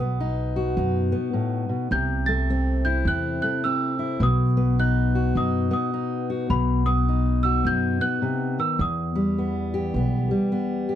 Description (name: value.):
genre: folk.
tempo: 105 BPM.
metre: 4/4.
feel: swing 62% on 8ths.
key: unclear.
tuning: A4 = 443 Hz.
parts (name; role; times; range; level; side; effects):
worn celesta; melody; 0.0-10.5 s; B5 to A6; -27 LUFS; right 2 dB; plate reverb.
fingerpicked steel-string acoustic guitar; accompaniment; 0.0-11.0 s; E2 to G4; -24 LUFS; left 2 dB; none.
upright bass; bass; 0.0-10.3 s; B1 to F#2; -24 LUFS; right 1 dB; none.
room: light reverb.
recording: dark, warm production.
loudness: -21 LUFS.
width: side -10 dB against mid.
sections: 0.0-11.0 A section.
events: none.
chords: 0.0 B; 1.9 Am/C; 4.2 B; 8.8 Em.